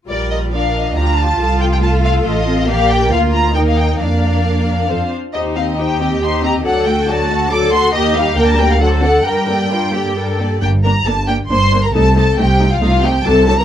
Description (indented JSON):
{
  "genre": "quick classical-period movement for string orchestra",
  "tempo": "137 BPM",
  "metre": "3/4",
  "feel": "rubato",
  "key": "Bb major, G minor from 5.3 s",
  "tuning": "A4 = 440 Hz",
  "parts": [
    { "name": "rich symphonic violin section", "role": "melody", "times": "0.1-13.6 s", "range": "D5 to D6", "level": "-18 LUFS", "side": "left 1 dB", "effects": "none" },
    { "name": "rich symphonic violin section", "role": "second line", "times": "0.1-13.6 s", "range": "Eb4 to F#5", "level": "-21 LUFS", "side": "left 1 dB", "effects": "none" },
    { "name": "rich studio viola section", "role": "accompaniment", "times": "0.1-13.6 s", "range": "D3 to G4", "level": "-21 LUFS", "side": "left 1 dB", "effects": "none" },
    { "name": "warm symphonic double bass section", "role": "bass", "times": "0.1-13.6 s", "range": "G1 to G2", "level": "-17 LUFS", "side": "right 1 dB", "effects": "none" },
    { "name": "rich symphonic cello section", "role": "bass", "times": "0.5-13.6 s", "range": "G2 to Bb4", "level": "-20 LUFS", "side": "equal", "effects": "none" }
  ],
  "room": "light reverb",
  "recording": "dark, warm production",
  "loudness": "-12 LUFS",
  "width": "side -10 dB against mid",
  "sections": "0.1-10.6 A section; 10.6-13.6 B section",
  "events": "none",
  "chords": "0.1 Bb; 1.4 F7/C; 2.7 Bb; 3.6 Eb; 4.0 Bb/F; 4.9 F5; 5.3 Cm/Eb; 6.7 D; 7.9 Eb; 8.4 Gm/D; 8.8 D7; 9.3 Gm; 11.9 Adim/C"
}